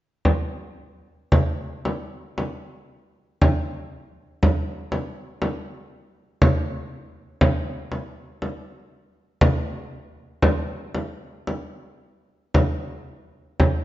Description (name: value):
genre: caucasian folk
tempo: free time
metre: none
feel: none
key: none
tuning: none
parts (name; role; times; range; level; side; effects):
- frame drum; percussion; 0.2-13.8 s; none; -20 LUFS; equal; none
room: moderate recital hall reverb, RT60 1.6 s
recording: nothing above 7.5 kHz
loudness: -22 LUFS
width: side -15 dB against mid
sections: 0.3-13.8 A section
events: none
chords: none